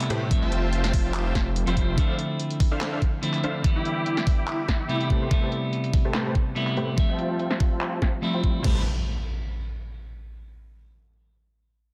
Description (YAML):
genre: future bass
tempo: 144 BPM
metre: 4/4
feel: swing 53% on 16ths, half-time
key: A minor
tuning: A4 = 440 Hz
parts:
  - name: clean electric guitar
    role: accompaniment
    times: 0.0-8.8 s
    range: C3 to E5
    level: -31 LUFS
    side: equal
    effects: sidechain pumping, delay
  - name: pop drum kit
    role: drums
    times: 0.0-8.7 s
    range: crash cymbal, handclaps, hi-hat, snare drum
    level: -35 LUFS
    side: equal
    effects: overdrive, low-pass filter on snare, low-pass filter on hats, low-pass filter on cymbals, low-pass filter on room
  - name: dense compressed supersaw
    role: riff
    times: 0.1-8.8 s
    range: A3 to D6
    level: -33 LUFS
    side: equal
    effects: sidechain pumping, low-pass filter, delay
  - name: detuned saw bass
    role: bass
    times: 0.1-2.0, 8.6-8.8 s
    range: F1 to A2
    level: -29 LUFS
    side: equal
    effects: chorus, sidechain pumping
  - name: electronic kick drum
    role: drums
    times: 0.3-8.7 s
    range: none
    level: -25 LUFS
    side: equal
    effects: overdrive
  - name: impact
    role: sound effects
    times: 8.6-10.3 s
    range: none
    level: -34 LUFS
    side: equal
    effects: none
room: light reverb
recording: dense, heavily limited modern master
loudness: -25 LUFS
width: mono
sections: 0.0-8.6 A section; 8.6-10.3 B section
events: filter sweep on drum 0.0-8.6; filter sweep on supersaw synth 0.0-8.6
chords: 0.3 Fmaj9; 2.0 Dm9; 3.6 Em7; 5.1 Am7; 7.0 Fmaj9; 8.6 Am7